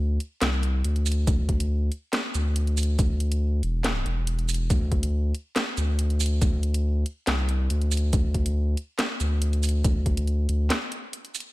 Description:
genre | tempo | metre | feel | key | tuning
deep dubstep | 140 BPM | 4/4 | swing 53% on 16ths, half-time | unclear | A4 = 440 Hz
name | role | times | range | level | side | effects
saturated sub bass | bass | 0.0-10.7 s | E1 to D2 | -23 LUFS | equal | none
garage drum kit | drums | 0.2-11.5 s | handclaps, hi-hat, shaker, snare drum | -29 LUFS | equal | studio reverb
electronic kick drum | drums | 1.3-10.2 s | none | -24 LUFS | equal | overdrive, studio reverb
room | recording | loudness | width
little or no reverb | none | -23 LUFS | side -19 dB against mid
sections
0.0-11.5 A section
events
break 10.7-11.5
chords
none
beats
0.42 0.84 | 1.27 1.70 2.13 2.56 | 2.99 3.42 3.85 4.27 | 4.70 5.13 5.56 5.99 | 6.42 6.84 7.27 7.70 | 8.13 8.56 8.99 9.42 | 9.85 10.27 10.70 11.13

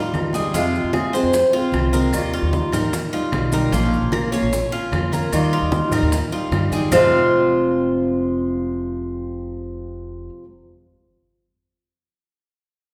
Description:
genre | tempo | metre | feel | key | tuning
latin, Cuban son and guajira | 150 BPM | 4/4 | straight | F minor | A4 = 439 Hz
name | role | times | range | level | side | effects
picked steel-string acoustic guitar | accompaniment | 0.0-10.5 s | F2 to F4 | -24 LUFS | equal | none
Cuban tres | arpeggios | 0.0-10.3 s | F4 to F5 | -24 LUFS | equal | none
upright bass | bass | 0.1-10.3 s | F1 to G2 | -28 LUFS | equal | none
bongos | percussion | 0.1-7.0 s | none | -33 LUFS | equal | none
claves | percussion | 0.1-7.0 s | none | -36 LUFS | equal | none
congas | percussion | 0.1-7.0 s | none | -30 LUFS | equal | none
maracas | percussion | 0.1-7.0 s | none | -39 LUFS | equal | none
room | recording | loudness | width
wet recital hall reverb, RT60 1.6 s | recorded in a church or concert hall | -20 LUFS | mono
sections
0.5-6.9 A section; 6.9-10.1 B section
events
drum fill 0.0-0.5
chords
0.0 Ebadd9; 0.5 Fm; 2.1 Ebadd9; 3.7 Bbm; 5.3 Ebadd9; 6.9 Fm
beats
0.14 | 0.54 0.94 1.33 1.73 | 2.13 2.53 2.93 3.33 | 3.73 4.13 4.53 4.92 | 5.33 5.72 6.12 6.52 | 6.92 7.32 7.72 8.12 | 8.52 8.92 9.31 9.71

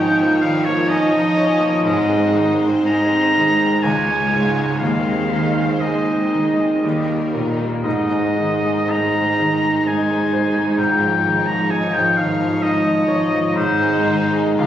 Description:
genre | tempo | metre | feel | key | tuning
classical, romantic movement for piano and orchestra | 54-66 BPM | 3/4 | rubato | Ab major | A4 = 440 Hz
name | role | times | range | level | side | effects
clear grand piano | melody | 0.0-14.7 s | Db2 to Db5 | -18 LUFS | equal | none
warm symphonic violin section | melody | 0.0-14.7 s | Bb4 to Db5 | -33 LUFS | left 2 dB | none
bright oboe | second line | 0.0-14.7 s | C5 to Bb5 | -20 LUFS | left 1 dB | none
rich symphonic violin section | second line | 0.0-14.7 s | G3 to F4 | -28 LUFS | left 3 dB | none
rich symphonic viola section | accompaniment | 0.0-14.7 s | F3 to Ab3 | -29 LUFS | right 2 dB | none
timpani | percussion | 0.0-0.4, 4.8-6.3 s | none | barely audible | none | none
rich symphonic cello section | bass | 1.8-14.7 s | Db2 to Eb3 | -28 LUFS | right 4 dB | none
rich symphonic double bass section | bass | 1.8-14.7 s | Ab1 to Eb2 | -31 LUFS | right 4 dB | none
room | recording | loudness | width
wet scoring stage reverb, RT60 1.6 s | recorded on a phone in the room, club reverb, compression | -15 LUFS | side -11 dB against mid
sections
0.0-14.7 A section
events
none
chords
0.0 Eb9/Ab; 1.8 Ab; 3.8 Db; 4.8 Ab/Eb; 6.8 Eb; 7.8 Ab; 10.8 Ebsus2/Ab; 13.6 Ab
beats
0.89 | 1.84 2.86 3.83 | 4.81 5.82 6.83 | 7.85 8.91 9.87 | 10.79 11.71 12.63 | 13.57 14.59

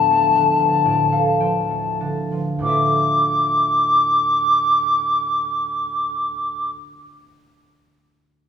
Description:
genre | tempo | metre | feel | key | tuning
celtic folk, Celtic slow air | 47-65 BPM | 3/4 | rubato | D dorian | A4 = 440 Hz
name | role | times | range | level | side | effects
wooden flute | melody | 0.0-6.7 s | A5 to D6 | -16 LUFS | left 2 dB | none
concert harp | accompaniment | 0.0-6.8 s | D2 to A5 | -24 LUFS | right 2 dB | none
room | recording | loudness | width
moderate recital hall reverb, RT60 1.8 s | minimal, uncompressed stereo recording | -16 LUFS | side -8 dB against mid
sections
0.0-2.6 A section; 2.6-6.3 B section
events
slowing down 0.0-2.6; harp fill 0.4-2.6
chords
0.0 Dm; 2.6 Dmadd9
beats
0.36 1.42 | 2.64 3.86 5.07

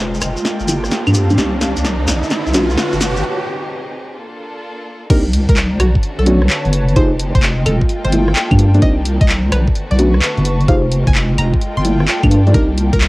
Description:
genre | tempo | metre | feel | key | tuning
UK garage, two-step garage | 129 BPM | 4/4 | swing 67% on 16ths | unclear | A4 = 440 Hz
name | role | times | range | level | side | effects
rich studio violin section | sustained chords | 0.0-13.1 s | Ab3 to C5 | -30 LUFS | equal | sidechain pumping, cassette tape
deep soft wobble bass | bass | 0.0-13.1 s | F1 to G2 | -15 LUFS | equal | chorus
riser | sound effects | 0.1-3.2 s | none | -22 LUFS | right 1 dB | none
airy breathy pad | texture | 0.0-13.1 s | D3 to C#6 | -24 LUFS | right 1 dB | chorus, sidechain pumping, cassette tape
shekere | percussion | 0.1-3.2 s | none | -26 LUFS | left 1 dB | none
punchy analog drum machine | drums | 0.2-13.1 s | claves, crash cymbal, handclaps, hi-hat, rim click, snare drum | -20 LUFS | equal | cassette tape
deep mellow chord stab | stabs | 0.7-12.7 s | F3 to C5 | -18 LUFS | equal | chorus, cassette tape, analog delay
string-like resonator pluck | melody | 5.1-13.1 s | F#4 to C6 | -24 LUFS | equal | chorus
electronic kick drum | drums | 5.1-13.0 s | none | -14 LUFS | equal | cassette tape
room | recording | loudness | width
light reverb | home recording on cassette | -12 LUFS | side -21 dB against mid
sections
0.0-5.1 A section; 5.1-13.1 B section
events
build-up 0.0-5.1; drum fill 0.0-3.2; filter sweep on synth stab 0.0-5.1; riser 0.1-3.2; break 3.2-5.1; drop 5.1-13.1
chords
0.5 Gm9; 1.4 Cm9; 2.1 Bm9; 3.2 Abmaj7/C; 4.2 Bbmaj7; 5.1 Cm9; 5.8 Bm9; 7.0 Fm9; 7.9 Gm9; 8.8 Cm9; 9.5 Bm9; 10.7 Fm9; 11.6 Gm9; 12.5 Cm9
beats
0.45 0.92 | 1.38 1.84 2.31 2.77 | 3.24 3.71 4.17 4.64 | 5.10 5.57 6.03 6.50 | 6.96 7.43 7.89 8.36 | 8.82 9.29 9.75 10.22 | 10.68 11.15 11.61 12.08 | 12.54 13.01

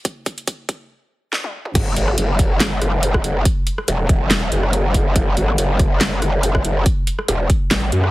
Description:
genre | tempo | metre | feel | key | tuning
heavy wobble dubstep | 141 BPM | 4/4 | swing 54% on 16ths, half-time | F# minor | A4 = 440 Hz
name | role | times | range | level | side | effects
dubstep drum kit | drums | 0.1-8.1 s | crash cymbal, handclaps, hi-hat, rim click, snare drum, toms | -21 LUFS | equal | high-pass filter on snare, small room ambience, high-pass filter on hats, high-pass filter on toms, high-pass filter on cymbals
electronic kick drum | drums | 0.1-7.6 s | none | -18 LUFS | equal | small room ambience
growl bass | bass | 1.8-8.1 s | E1 to F#2 | -18 LUFS | equal | chorus, overdrive
room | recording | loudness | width
little or no reverb | heavily compressed radio sound, high-pass filter | -16 LUFS | side -18 dB against mid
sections
0.0-1.8 A section; 1.8-8.1 B section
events
build-up 0.0-1.8; drum fill 0.0-0.9, 1.3-1.8; stop 0.9-1.8; drop 1.8-8.1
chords
none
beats
| 0.05 0.48 0.90 1.33 | 1.75 2.18 2.60 3.03 | 3.45 3.88 4.30 4.73 | 5.16 5.58 6.01 6.43 | 6.86 7.28 7.71

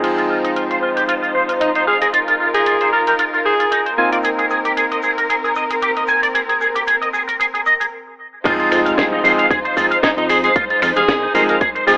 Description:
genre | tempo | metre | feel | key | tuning
nu-disco, nu disco | 114 BPM | 4/4 | swing 55% on 16ths | F minor | A4 = 439 Hz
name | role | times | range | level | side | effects
clear electric grand piano | accompaniment | 0.0-12.0 s | F3 to Ab4 | -22 LUFS | equal | analog delay
rich studio string section | sustained chords | 0.0-12.0 s | Ab3 to C5 | -22 LUFS | left 1 dB | sidechain pumping, low-pass filter
electric guitar with an envelope filter | riff | 0.0-11.9 s | Eb4 to Ab5 | -16 LUFS | equal | ensemble chorus, low-pass filter
house drum kit | drums | 0.0-12.0 s | crash cymbal, finger snaps, hi-hat, shaker, snare drum | -25 LUFS | equal | overdrive
breathy tenor saxophone | melody | 1.6-4.2, 10.0-12.0 s | Eb4 to Bb4 | -18 LUFS | equal | vintage 12-bit sampler grit, tape echo
tube shaker | percussion | 4.2-12.0 s | none | -44 LUFS | equal | none
chorused synth bass | bass | 8.5-12.0 s | F1 to F2 | -24 LUFS | equal | none
electronic kick drum | drums | 8.5-11.7 s | none | -22 LUFS | equal | overdrive
sub drop | sound effects | 8.6-10.6 s | none | -45 LUFS | equal | none
room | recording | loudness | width
moderate plate reverb, RT60 1.4 s | telephone sound | -14 LUFS | side -25 dB against mid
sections
0.0-8.5 A section; 8.5-12.0 B section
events
stop 7.9-8.5; drop 8.5-12.0; impact 8.5-10.6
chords
0.0 Fm7; 4.0 Abadd9; 8.5 Fm7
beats
| 0.03 0.56 1.08 1.61 | 2.14 2.66 3.19 3.72 | 4.24 4.77 5.29 5.82 | 6.35 6.87 7.40 7.93 | 8.45 8.98 9.51 10.03 | 10.56 11.09 11.61

